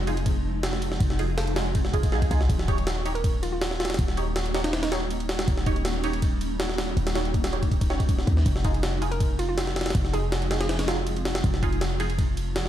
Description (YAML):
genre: drum and bass, jungle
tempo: 161 BPM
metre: 4/4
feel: straight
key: F minor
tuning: A4 = 441 Hz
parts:
  - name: granular cloud pad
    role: sustained chords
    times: 0.0-12.7 s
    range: F3 to F4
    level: -33 LUFS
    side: equal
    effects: built-in reverb
  - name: warm 808-style bass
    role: bass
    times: 0.0-12.7 s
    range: Eb1 to Eb2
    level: -28 LUFS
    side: equal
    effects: none
  - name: filtered dub chord stab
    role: stabs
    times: 0.1-12.1 s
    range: Eb4 to Db5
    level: -34 LUFS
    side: right 3 dB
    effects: phaser, wide subtle chorus, dub echo
  - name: jungle sampler-style drum kit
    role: drums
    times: 0.1-12.7 s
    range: kick drum, ride cymbal, snare drum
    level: -26 LUFS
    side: equal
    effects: none
  - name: hollow square pluck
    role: melody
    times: 3.1-5.0, 9.1-11.3 s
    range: Eb4 to Bb4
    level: -32 LUFS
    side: right 2 dB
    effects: chorus, dub echo
room: light reverb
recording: dark, warm production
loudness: -23 LUFS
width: side -11 dB against mid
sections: 0.0-12.7 A section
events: none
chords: 0.0 Fm7; 2.5 Eb7; 8.5 Fm7